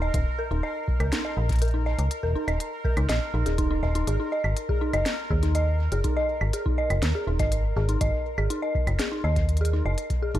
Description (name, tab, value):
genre	IDM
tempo	122 BPM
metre	4/4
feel	straight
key	unclear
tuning	A4 = 436 Hz
part	dark detuned synth bell	arpeggios	0.0-10.4 s	Eb4 to Eb5	-29 LUFS	equal	chorus, ping-pong delay
part	metallic FM bass	bass	0.0-10.4 s	Eb1 to Eb2	-24 LUFS	equal	tube saturation
part	bubbling stepped-filter texture	texture	0.0-10.4 s	Bb4	-36 LUFS	right 1 dB	chorus, built-in reverb
part	electronic kick drum	drums	0.1-10.2 s	none	-28 LUFS	equal	none
part	industrial drum kit	drums	0.1-10.4 s	claves, hi-hat, snare drum	-33 LUFS	equal	ping-pong delay
room	little or no reverb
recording	none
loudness	-23 LUFS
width	side -13 dB against mid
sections	0.0-10.4 A section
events	none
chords	0.0 Eb5; 4.1 Absus2